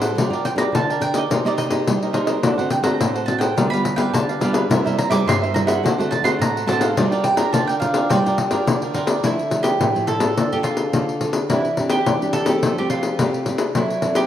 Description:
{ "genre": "samba and choro", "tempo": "106 BPM", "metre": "4/4", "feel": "straight", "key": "G minor, D minor from 9.2 s", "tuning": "A4 = 440 Hz", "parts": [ { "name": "cavaquinho", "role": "accompaniment", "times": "0.0-9.2 s", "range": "D4 to G5", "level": "-26 LUFS", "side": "right 5 dB", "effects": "none" }, { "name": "nylon-string guitar", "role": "accompaniment", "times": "0.0-14.3 s", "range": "G2 to Bb4", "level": "-23 LUFS", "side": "equal", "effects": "none" }, { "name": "pandeiro", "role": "percussion", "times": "0.0-14.3 s", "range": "none", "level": "-20 LUFS", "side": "left 3 dB", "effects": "none" }, { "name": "mandolin", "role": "melody", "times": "0.5-14.3 s", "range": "E4 to D6", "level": "-24 LUFS", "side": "right 3 dB", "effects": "none" } ], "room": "moderate plate reverb, RT60 2.5 s", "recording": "rough home demo mix", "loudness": "-17 LUFS", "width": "side -10 dB against mid", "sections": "0.0-9.2 A section; 9.2-14.3 B section", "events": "none", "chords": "0.2 Gm7; 1.3 Cm7; 2.4 D7; 3.6 G7/D; 4.7 C7; 5.8 D7; 7.0 Gm7; 9.2 Dmadd9; 10.4 Bbmaj7/D; 11.5 Cadd9/E; 12.6 Fadd9", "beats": "| 0.17 0.74 1.31 1.87 | 2.44 3.00 3.57 4.14 | 4.70 5.27 5.83 6.40 | 6.97 7.54 8.10 8.67 | 9.24 9.80 10.37 10.94 | 11.51 12.07 12.64 13.21 | 13.77" }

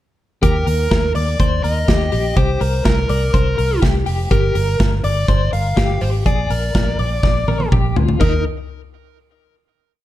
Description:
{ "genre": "jangly indie pop", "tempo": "123 BPM", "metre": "4/4", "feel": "straight", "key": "Eb major", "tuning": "A4 = 441 Hz", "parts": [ { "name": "dark smooth lead guitar", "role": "melody", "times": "0.4-8.4 s", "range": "Bb4 to F5", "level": "-22 LUFS", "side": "equal", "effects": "overdrive" }, { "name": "twelve-string electric guitar", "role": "arpeggios", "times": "0.4-8.4 s", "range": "Eb4 to D5", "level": "-24 LUFS", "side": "left 7 dB", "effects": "tremolo" }, { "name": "vintage muted fingered electric bass", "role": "bass", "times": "0.4-8.4 s", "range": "F1 to Eb2", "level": "-19 LUFS", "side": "equal", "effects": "none" }, { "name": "big rock drum kit", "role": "drums", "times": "0.4-8.3 s", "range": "crash cymbal, hi-hat, kick drum, snare drum, toms", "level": "-18 LUFS", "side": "equal", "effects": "none" } ], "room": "light reverb", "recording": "dark, warm production", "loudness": "-14 LUFS", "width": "side -14 dB against mid", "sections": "0.4-8.2 verse; 8.2-10.0 final chord", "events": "drum fill 7.2-8.2", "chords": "0.4 Ebmaj7; 2.4 C5; 4.3 Gm7; 6.3 Bb7; 8.2 Eb5", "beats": "| 0.43 0.91 1.40 1.88 | 2.37 2.85 3.34 3.83 | 4.31 4.80 5.29 5.77 | 6.26 6.75 7.23 7.72 | 8.21" }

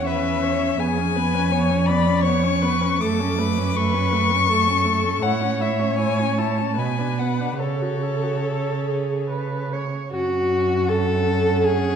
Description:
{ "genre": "classical, slow romantic movement for string quartet", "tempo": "70-84 BPM", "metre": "3/4", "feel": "rubato", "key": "F# minor", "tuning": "A4 = 440 Hz", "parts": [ { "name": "rich violin", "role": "melody", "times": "0.0-12.0 s", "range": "C#5 to D6", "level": "-25 LUFS", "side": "left 7 dB", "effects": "none" }, { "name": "warm violin", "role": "second line", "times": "0.0-12.0 s", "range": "F#4 to D5", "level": "-25 LUFS", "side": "left 2 dB", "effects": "none" }, { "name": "rich viola", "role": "accompaniment", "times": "0.0-12.0 s", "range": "A3 to C#5", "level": "-27 LUFS", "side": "right 2 dB", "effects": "none" }, { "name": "warm cello", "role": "bass", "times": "0.0-12.0 s", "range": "E2 to C#3", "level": "-23 LUFS", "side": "right 3 dB", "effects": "none" } ], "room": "wet recital hall reverb, RT60 1.4 s", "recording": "dark, warm production", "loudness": "-19 LUFS", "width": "side -7 dB against mid", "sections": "0.0-10.1 A section; 10.1-12.0 B section", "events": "none", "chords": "0.0 C#m/E; 0.8 C#7/E#; 3.0 F#m; 5.2 A; 6.8 G#dim/B; 7.6 F#m/C#; 9.3 Aadd9/C#; 10.1 F#m", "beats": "0.08 | 0.80 1.52 2.24 | 3.00 3.76 4.50 | 5.22 5.99 6.78 | 7.60 8.45 9.29 | 10.13 10.90 11.65" }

